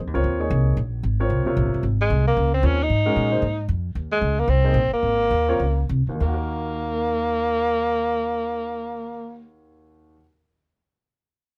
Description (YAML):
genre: modal jazz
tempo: 193-227 BPM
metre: 4/4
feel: swing 58% on 8ths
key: Eb dorian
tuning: A4 = 440 Hz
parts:
  - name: upright bass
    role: bass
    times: 0.0-10.2 s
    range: Eb1 to Bb2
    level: -25 LUFS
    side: equal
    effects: none
  - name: warm grand piano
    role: accompaniment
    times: 0.1-10.3 s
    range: Eb2 to Db5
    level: -29 LUFS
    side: equal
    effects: none
  - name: mellow tenor saxophone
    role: melody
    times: 2.0-9.5 s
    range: Ab3 to Eb4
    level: -25 LUFS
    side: equal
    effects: none
room: little or no reverb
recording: close, detailed microphones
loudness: -22 LUFS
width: mono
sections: 0.0-4.0 A section; 4.0-6.2 B section; 6.2-8.7 C section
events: slowing down 4.0-6.2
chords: 0.0 Eb9sus4; 4.0 Eb7sus4; 6.2 Ebm